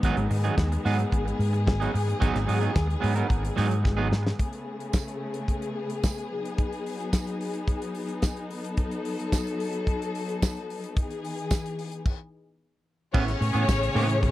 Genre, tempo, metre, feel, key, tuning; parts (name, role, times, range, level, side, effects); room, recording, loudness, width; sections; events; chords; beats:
disco; 110 BPM; 4/4; straight; A4 = 437 Hz
electric guitar at the edge of break-up; accompaniment; 0.0-4.3, 13.1-14.3 s; E3 to A#4; -30 LUFS; right 6 dB; spring reverb
warm studio string section; sustained chords; 0.0-14.3 s; C#3 to A4; -31 LUFS; left 2 dB
hollow-body short-scale fingered electric bass; bass; 0.0-4.3, 13.1-14.3 s; G#1 to A2; -26 LUFS; equal
damped 70s drum kit; drums; 0.0-14.3 s; crash cymbal, hi-hat, kick drum, snare drum; -27 LUFS; equal
tambourine; percussion; 4.9-13.8 s; -39 LUFS; right 17 dB
clear studio string section; second line; 13.1-14.3 s; C#4 to C#5; -27 LUFS; left 2 dB
little or no reverb; dry, close 1970s-style studio recording; -25 LUFS; side -15 dB against mid
0.0-4.4 A section; 4.4-13.1 B section; 13.1-14.3 C section
drum fill 3.9-4.4; stop 12.1-13.1
0.0 G#m7; 4.4 Amaj9; 6.3 B6; 8.5 B7; 11.0 Emaj7; 13.1 Amaj9
| 0.03 0.58 1.12 1.67 | 2.21 2.76 3.31 3.85 | 4.40 4.95 5.49 6.04 | 6.59 7.13 7.68 8.23 | 8.78 9.32 9.87 10.42 | 10.96 11.51 12.06 12.60 | 13.15 13.69 14.24